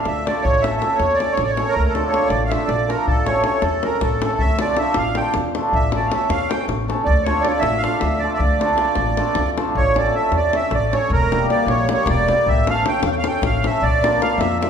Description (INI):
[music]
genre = balkan folk, Balkan wedding band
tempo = 314 BPM (eighths)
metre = 7/8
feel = straight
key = D harmonic minor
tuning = A4 = 440 Hz
[part]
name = accordion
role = melody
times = 0.0-14.7 s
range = A4 to G5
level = -21 LUFS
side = right 3 dB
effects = light tremolo tuning
[part]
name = upright bass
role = bass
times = 0.1-14.6 s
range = E1 to F2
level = -24 LUFS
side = left 1 dB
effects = none
[part]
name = davul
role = percussion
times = 0.1-14.7 s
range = none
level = -23 LUFS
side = left 2 dB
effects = none
[part]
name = cimbalom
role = accompaniment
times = 0.3-14.7 s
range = G3 to Bb4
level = -22 LUFS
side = left 1 dB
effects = none
[sound]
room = wet recital hall reverb, RT60 1.3 s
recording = recorded in a church or concert hall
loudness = -16 LUFS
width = side -7 dB against mid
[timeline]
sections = 0.0-9.8 A section; 9.8-14.7 B section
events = none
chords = 0.4 A; 1.8 Dm; 3.1 A; 4.4 Dm; 5.7 A; 7.1 Dm; 9.8 A; 11.1 Edim; 12.5 A; 13.8 Bb